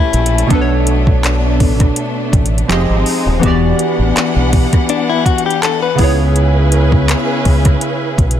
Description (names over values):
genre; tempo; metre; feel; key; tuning
contemporary R&B; 82 BPM; 4/4; swing 54% on 16ths; B minor; A4 = 440 Hz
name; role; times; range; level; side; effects
warm analog keys; accompaniment; 0.0-8.4 s; A2 to Eb5; -17 LUFS; equal; chorus
warm studio string section; sustained chords; 0.0-8.4 s; C#3 to F#5; -20 LUFS; equal; sidechain pumping
direct-recorded clean electric guitar; arpeggios; 0.0-0.5, 4.9-6.2 s; D4 to B4; -19 LUFS; left 9 dB; ping-pong delay
deep dub fingered electric bass; bass; 0.1-8.4 s; Eb1 to C#2; -14 LUFS; equal; none
smooth R&B drum kit; drums; 0.1-8.4 s; handclaps, hi-hat, kick drum, rim click; -15 LUFS; equal; none
room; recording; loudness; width
little or no reverb; none; -11 LUFS; side -10 dB against mid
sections
0.0-8.4 A section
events
none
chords
0.0 A7; 0.5 Bm7; 2.7 Fm9; 3.4 Em9; 6.0 C#m7